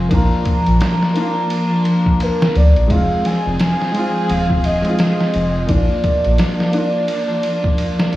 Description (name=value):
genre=trip hop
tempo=86 BPM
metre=4/4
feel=swing 60% on 16ths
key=unclear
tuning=A4 = 440 Hz
part: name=felt-muted upright piano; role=accompaniment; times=0.0-8.2 s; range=Ab3 to F4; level=-22 LUFS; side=equal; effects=harmonic tremolo, tape echo
part: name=clear symphonic string section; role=sustained chords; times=0.0-8.2 s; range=F3 to Ab4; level=-21 LUFS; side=equal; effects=none
part: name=round analog bass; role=bass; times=0.0-8.2 s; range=Eb1 to D2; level=-16 LUFS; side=equal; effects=none
part: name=pure breathy sine lead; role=melody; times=0.1-8.1 s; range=Bb4 to Bb5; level=-22 LUFS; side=equal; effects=wide subtle chorus, dub echo
part: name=trip hop sampler-style drum kit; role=drums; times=0.1-8.2 s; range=kick drum, ride cymbal, snare drum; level=-20 LUFS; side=equal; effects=none
room=light reverb, digital ambience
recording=worn, warbling old tape, cassette tape, vinyl crackle, warbly pitch drift, studio reverb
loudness=-14 LUFS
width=side -15 dB against mid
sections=0.0-8.2 A section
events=none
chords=0.1 Bb; 2.9 Fm; 5.7 Bb